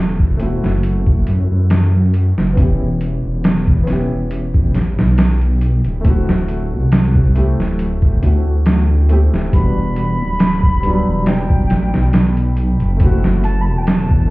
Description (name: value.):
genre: trip hop.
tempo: 69 BPM.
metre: 4/4.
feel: swing 54% on 16ths.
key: E minor.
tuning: A4 = 440 Hz.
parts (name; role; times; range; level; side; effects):
dark upright piano; accompaniment; 0.0-14.3 s; F#3 to G4; -23 LUFS; equal; tremolo, low-pass filter, tape echo.
dark detuned saw bass; bass; 0.0-14.3 s; D1 to F#2; -15 LUFS; equal; none.
trip hop sampler-style drum kit; drums; 0.2-14.3 s; hi-hat, kick drum, snare drum; -15 LUFS; equal; none.
wooden flute; melody; 9.5-14.3 s; G5 to B5; -24 LUFS; equal; dub echo.
room: little or no reverb.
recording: heard muffled through a wall, club reverb, vinyl crackle, EQ.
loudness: -13 LUFS.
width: side -20 dB against mid.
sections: 0.0-14.3 A section.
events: none.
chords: 0.0 F#m7b5; 2.6 A7/E (rootless); 6.0 D7sus4; 9.5 Em7; 13.0 F#m7b5.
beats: 0.83 1.70 | 2.57 3.44 4.31 5.18 | 6.05 6.92 7.79 8.66 | 9.53 10.40 11.27 12.14 | 13.01 13.88.